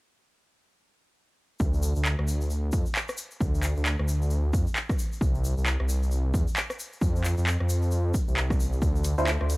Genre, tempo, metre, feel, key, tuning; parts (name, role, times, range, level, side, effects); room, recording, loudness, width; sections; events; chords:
UK garage, two-step garage; 133 BPM; 4/4; swing 60% on 16ths; D minor; A4 = 440 Hz
dark detuned saw bass; bass; 1.6-9.6 s; C2 to F2; -25 LUFS; equal
electronic kick drum; drums; 1.6-8.9 s; -27 LUFS; equal; overdrive, cassette tape
egg shaker; percussion; 1.6-9.6 s; -40 LUFS; left 2 dB
punchy analog drum machine; drums; 2.1-9.6 s; handclaps, hi-hat, rim click; -30 LUFS; equal; overdrive, cassette tape
percussive organ stab; stabs; 9.2-9.3 s; D4 to C5; -27 LUFS; right 1 dB; wide subtle chorus, tape echo
little or no reverb; home recording on cassette; -24 LUFS; side -22 dB against mid
1.6-9.6 A section
1.6 Dm; 5.2 C; 7.0 F5; 8.8 Dm9